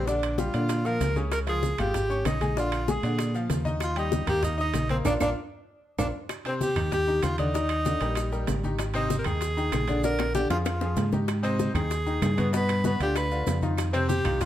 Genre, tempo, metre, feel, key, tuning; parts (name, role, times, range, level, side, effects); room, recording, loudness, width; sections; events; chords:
latin, salsa; 193 BPM; 4/4; straight; Eb major; A4 = 440 Hz
bright tenor saxophone; melody; 0.0-14.5 s; C4 to B4; -29 LUFS; equal; plate reverb
bright concert grand piano; accompaniment; 0.0-14.5 s; Cb3 to Eb6; -31 LUFS; left 2 dB
deep dub fingered electric bass; bass; 0.0-14.5 s; Ab1 to Bb2; -28 LUFS; right 1 dB
bongos; percussion; 0.1-14.5 s; -35 LUFS; left 6 dB
congas; percussion; 0.1-14.5 s; -33 LUFS; left 1 dB
maracas; percussion; 0.1-14.5 s; -44 LUFS; right 6 dB
timbales; percussion; 0.2-14.5 s; -37 LUFS; right 7 dB
claves; percussion; 1.3-14.4 s; -43 LUFS; right 2 dB
moderate studio reverb, RT60 0.8 s; -24 LUFS; side -12 dB against mid
0.0-6.3 A section; 6.3-14.5 B section
band accent 5.1-6.3; drum fill 5.4-6.3, 10.0-11.3
0.1 Bb6; 1.3 Db; 2.6 Bb7; 3.8 Eb; 5.1 Bb; 6.3 Ebmaj13; 7.5 Ebmaj7; 8.8 Abmaj7; 10.0 Bb7; 11.3 Abmaj7; 12.5 G7; 13.8 F5